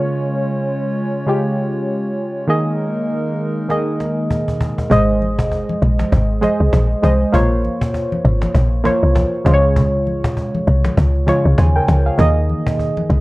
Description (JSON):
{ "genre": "afrobeats", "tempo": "99 BPM", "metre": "4/4", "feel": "swing 58% on 16ths", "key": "Ab major", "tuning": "A4 = 440 Hz", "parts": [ { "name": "warm analog keys", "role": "accompaniment", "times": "0.0-13.2 s", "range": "Db3 to Ab5", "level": "-18 LUFS", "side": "right 1 dB", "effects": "chorus, plate reverb" }, { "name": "hollow soft pad", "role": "sustained chords", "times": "0.0-4.9 s", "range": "Ab3 to Db5", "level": "-25 LUFS", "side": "equal", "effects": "chorus" }, { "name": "cajon", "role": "drums", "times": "3.7-13.2 s", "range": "none", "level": "-23 LUFS", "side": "equal", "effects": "none" }, { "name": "woody log drum bass", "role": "bass", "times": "4.9-13.2 s", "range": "Ab1 to Eb2", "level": "-15 LUFS", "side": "equal", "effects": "none" }, { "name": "congas", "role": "percussion", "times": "4.9-13.2 s", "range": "none", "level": "-24 LUFS", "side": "left 1 dB", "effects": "none" } ], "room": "light reverb", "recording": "worn, warbling old tape, cassette tape, warbly pitch drift", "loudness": "-14 LUFS", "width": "side -20 dB against mid", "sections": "0.0-4.9 A section; 4.9-13.2 B section", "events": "drum fill 3.7-4.9", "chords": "0.0 Db; 2.5 Ebsus4; 4.9 Ab; 7.3 Bbmadd9; 9.5 Db; 12.2 Ebsus4" }